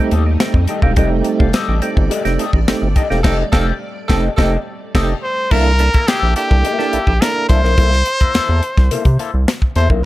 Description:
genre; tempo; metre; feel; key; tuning
funk; 106 BPM; 4/4; straight; unclear; A4 = 440 Hz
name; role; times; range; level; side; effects
string machine, full ensemble; sustained chords; 0.0-5.5 s; G3 to D5; -27 LUFS; equal; ensemble chorus
percussive tonewheel organ; stabs; 0.0-7.6 s; G3 to C5; -21 LUFS; right 5 dB; chorus vibrato, slow rotary speaker
electric guitar at the edge of break-up; accompaniment; 0.1-10.0 s; Bb3 to F5; -23 LUFS; left 6 dB; wah
round analog bass; bass; 0.1-10.0 s; E1 to C3; -16 LUFS; equal; none
tight funk drum kit; drums; 0.1-10.0 s; crash cymbal, hi-hat, kick drum, snare drum; -16 LUFS; equal; none
raspy tenor saxophone; second line; 3.2-5.1 s; A4; -26 LUFS; right 3 dB; none
brilliant trumpet; melody; 5.2-9.9 s; G4 to C5; -18 LUFS; equal; none
room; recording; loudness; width
small room ambience; none; -13 LUFS; side -16 dB against mid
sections
0.0-5.5 A section; 5.5-10.1 B section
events
band accent 3.2-5.5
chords
0.0 F9; 5.5 C13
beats
0.40 | 0.97 1.54 2.11 2.67 | 3.24 3.81 4.38 4.95 | 5.51 6.08 6.64 7.21 | 7.78 8.34 8.91 9.47

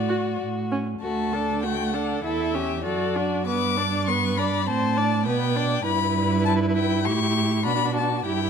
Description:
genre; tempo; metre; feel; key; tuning
quick classical-period movement for string quartet; 99 BPM; 2/4; straight; D major; A4 = 436 Hz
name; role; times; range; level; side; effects
warm violin; melody; 0.0-8.5 s; D5 to D6; -27 LUFS; left 11 dB; none
warm violin; second line; 0.0-8.5 s; F#4 to D5; -30 LUFS; left 4 dB; none
warm cello; bass; 0.0-8.5 s; D2 to B2; -26 LUFS; right 4 dB; none
rich viola; accompaniment; 0.1-8.5 s; A3 to F#4; -27 LUFS; right 3 dB; none
room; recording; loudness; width
light reverb; close, detailed microphones; -21 LUFS; side -6 dB against mid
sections
0.0-1.0 A section; 1.0-8.5 B section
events
none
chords
0.4 A; 1.0 D; 2.2 A7/E; 2.9 D/F#; 3.5 G; 4.7 D5/A; 5.3 G/B; 5.9 Em/G; 7.1 A7; 7.7 Bm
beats
0.41 | 1.03 1.64 | 2.25 2.85 | 3.48 4.08 | 4.68 5.26 | 5.85 6.45 | 7.06 7.66 | 8.26

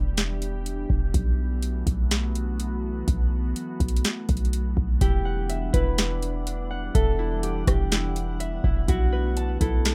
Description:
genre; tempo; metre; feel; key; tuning
hip hop, atmospheric cloud-rap; 124 BPM; 4/4; half-time; E minor; A4 = 440 Hz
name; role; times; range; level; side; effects
glassy FM pad; sustained chords; 0.0-9.9 s; E3 to F#5; -36 LUFS; equal; ensemble chorus, built-in reverb, sidechain pumping
warm 808-style bass; bass; 0.0-9.9 s; E1 to B1; -28 LUFS; equal; none
booming analog drum machine; drums; 0.2-9.9 s; hi-hat, kick drum, rim click, snare drum; -27 LUFS; equal; none
mellow electric guitar; melody; 5.0-9.9 s; F#4 to B4; -33 LUFS; equal; low-pass filter, tape echo
Celtic harp; arpeggios; 5.0-9.9 s; E4 to A5; -37 LUFS; equal; low-pass filter, tape echo
room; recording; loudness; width
little or no reverb; rough home demo mix; -25 LUFS; mono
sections
0.0-5.0 A section; 5.0-9.9 B section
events
none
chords
0.0 Em7; 1.1 B7sus4; 5.0 Em9; 8.9 B7sus4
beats
0.17 0.66 | 1.14 1.63 2.11 2.59 | 3.08 3.56 4.04 4.53 | 5.01 5.50 5.98 6.46 | 6.95 7.43 7.92 8.40 | 8.88 9.37 9.85

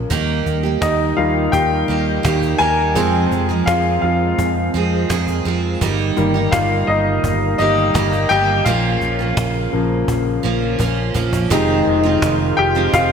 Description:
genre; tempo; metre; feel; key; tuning
piano-driven pop; 84 BPM; 4/4; straight; F minor; A4 = 440 Hz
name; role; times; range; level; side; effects
clear concert grand piano; accompaniment; 0.0-13.1 s; Db3 to Ab5; -18 LUFS; left 3 dB; none
warm analog pad; sustained chords; 0.0-13.1 s; Db3 to C6; -27 LUFS; equal; chorus
fingered electric bass; bass; 0.0-13.1 s; F1 to F2; -21 LUFS; right 1 dB; none
picked steel-string acoustic guitar; riff; 0.1-13.1 s; F2 to Ab4; -22 LUFS; right 8 dB; lush chorus
cajon; drums; 0.1-13.1 s; none; -25 LUFS; equal; none
mellow French horn section; second line; 11.5-12.9 s; Eb3 to Eb4; -22 LUFS; left 5 dB; ping-pong delay
room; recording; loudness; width
moderate lush hall reverb, RT60 2.8 s; bright 1980s-style digital production; -15 LUFS; side -7 dB against mid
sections
0.0-11.5 A section; 11.5-13.1 B section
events
grand piano solo 0.0-11.5, 11.5-13.1; drum fill 10.8-11.5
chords
0.1 Eb; 3.0 Fm; 5.8 Eb/G; 8.7 Bbm; 11.5 Fm7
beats
| 0.11 0.82 1.54 2.25 | 2.96 3.67 4.39 5.10 | 5.81 6.52 7.24 7.95 | 8.66 9.37 10.09 10.80 | 11.51 12.22 12.94

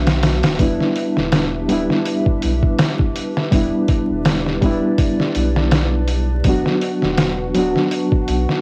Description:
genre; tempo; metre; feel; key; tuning
trip hop; 82 BPM; 4/4; swing 56% on 16ths; E minor; A4 = 440 Hz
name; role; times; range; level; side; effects
reed electric piano; accompaniment; 0.0-8.6 s; F#3 to F#4; -22 LUFS; equal; harmonic tremolo, tape echo
warbly tape-like pad; sustained chords; 0.0-8.6 s; D4 to F#5; -30 LUFS; equal; chorus, built-in reverb
soft dub sub bass; bass; 0.0-8.5 s; D1 to B1; -24 LUFS; equal; tube saturation
trip hop sampler-style drum kit; drums; 0.1-8.6 s; hi-hat, kick drum, snare drum; -21 LUFS; equal; none
room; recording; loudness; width
little or no reverb; home recording on cassette, vinyl crackle; -18 LUFS; mono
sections
0.0-8.6 A section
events
none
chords
0.0 Bm; 0.6 Em7; 6.5 Bm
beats
| 0.60 1.33 2.06 2.79 | 3.52 4.25 4.99 5.72 | 6.45 7.18 7.91

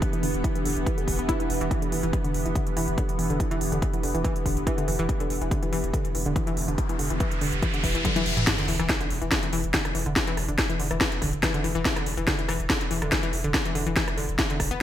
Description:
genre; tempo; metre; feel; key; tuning
driving peak-time techno; 142 BPM; 4/4; straight; E minor; A4 = 441 Hz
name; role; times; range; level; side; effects
swarming drone; drone; 0.0-8.5 s; E3 to B3; -34 LUFS; right 1 dB; built-in reverb, phaser, sidechain pumping
electronic kick drum; drums; 0.0-14.7 s; none; -28 LUFS; equal; small room ambience
techno drum kit; drums; 0.0-14.8 s; crash cymbal, hi-hat, rim click, snare drum, toms; -28 LUFS; equal; small room ambience, gated reverb
warbly tape-like pad; texture; 0.0-8.5 s; D4 to B4; -34 LUFS; right 2 dB; chorus, built-in reverb, sidechain pumping
analog pluck; riff; 0.1-14.8 s; D3 to E4; -30 LUFS; left 1 dB; chorus, sidechain pumping, digital delay
warm sub bass; bass; 0.2-14.8 s; E1; -31 LUFS; equal; overdrive, sidechain pumping, low-pass filter
riser and sub drop; sound effects; 6.4-10.2 s; none; -32 LUFS; equal; none
room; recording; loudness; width
light reverb, digital ambience; bright 1980s-style digital production; -23 LUFS; side -11 dB against mid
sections
0.0-8.5 A section; 8.5-14.8 B section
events
riser 6.4-8.5; drum fill 8.0-8.5; drop 8.5-14.8; impact 8.5-10.2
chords
0.0 Em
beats
| 0.02 0.44 0.87 1.29 | 1.71 2.13 2.56 2.98 | 3.40 3.82 4.25 4.67 | 5.09 5.51 5.94 6.36 | 6.78 7.20 7.63 8.05 | 8.47 8.89 9.32 9.74 | 10.16 10.58 11.01 11.43 | 11.85 12.27 12.70 13.12 | 13.54 13.96 14.39

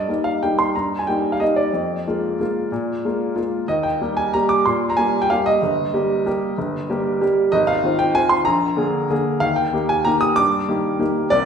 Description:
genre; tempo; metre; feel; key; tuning
classical, piano waltz; 187 BPM; 3/4; uneven beats, rubato; Eb major; A4 = 440 Hz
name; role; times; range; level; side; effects
clear upright piano; solo; 0.0-11.5 s; G1 to Eb6; -17 LUFS; equal; none
room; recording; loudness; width
wet recital hall reverb, RT60 1.4 s; heard from further back in the room; -17 LUFS; side -7 dB against mid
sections
0.0-11.5 A section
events
none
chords
0.0 Eb/G; 1.7 Bb7/F; 3.7 Eb; 5.6 Eb/G; 7.5 Fm7/Ab; 8.5 Bb7; 9.4 Eb; 10.4 Eb/G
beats
0.09 0.43 | 0.75 1.07 1.41 | 1.75 2.07 2.40 | 2.73 3.05 3.38 | 3.70 4.02 4.35 | 4.67 4.98 5.30 | 5.62 5.94 6.27 | 6.59 6.90 7.22 | 7.54 7.84 8.16 | 8.48 8.79 9.12 | 9.43 9.74 10.06 | 10.38 10.69 11.01 | 11.32

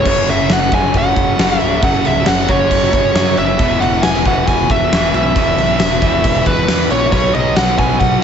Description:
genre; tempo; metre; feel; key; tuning
hard rock; 136 BPM; 4/4; straight; unclear; A4 = 441 Hz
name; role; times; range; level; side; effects
dark smooth lead guitar; melody; 0.0-8.2 s; B4 to G#5; -16 LUFS; equal; overdrive, slapback echo
sludgy distorted guitar; riff; 0.0-8.2 s; E2 to B3; -18 LUFS; equal; overdrive, slapback echo
fuzz picked electric bass; bass; 0.0-8.2 s; C#1 to F#2; -20 LUFS; equal; overdrive
huge arena drum kit; drums; 0.1-8.1 s; crash cymbal, kick drum, snare drum; -16 LUFS; equal; none
room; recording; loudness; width
moderate lush hall reverb, RT60 1.7 s, small room reverb; big arena sound, nothing above 7.9 kHz; -11 LUFS; side -8 dB against mid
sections
0.1-8.2 A section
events
none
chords
0.1 F#5; 3.6 E5; 7.1 B5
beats
| 0.06 0.50 0.94 1.39 | 1.83 2.27 2.71 3.15 | 3.60 4.04 4.48 4.92 | 5.36 5.80 6.25 6.69 | 7.13 7.57 8.01

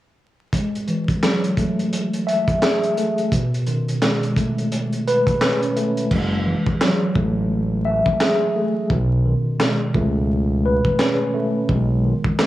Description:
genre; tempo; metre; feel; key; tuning
hip hop, boom-bap hip-hop; 86 BPM; 4/4; swing 59% on 16ths; F# dorian; A4 = 439 Hz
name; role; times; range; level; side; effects
mellow tine electric piano; accompaniment; 0.5-12.5 s; B2 to E5; -20 LUFS; equal; medium stereo tremolo, high-pass filter, low-pass filter
crunchy breakbeat drum kit; drums; 0.5-12.5 s; crash cymbal, handclaps, hi-hat, kick drum, snare drum; -22 LUFS; equal; none
smooth synth bass; bass; 6.1-12.1 s; F#1 to C#2; -20 LUFS; equal; transformer saturation
room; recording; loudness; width
small room ambience; dry, gritty hardware recording, vinyl crackle; -18 LUFS; side -15 dB against mid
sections
0.5-6.1 A section; 6.1-12.5 B section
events
hi-hats muted 6.1-12.5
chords
0.5 F#m9; 3.3 B13; 6.1 F#m9; 8.9 B13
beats
| 0.53 1.23 1.93 2.62 | 3.32 4.02 4.72 5.41 | 6.11 6.81 7.51 8.20 | 8.90 9.60 10.30 10.99 | 11.69 12.39

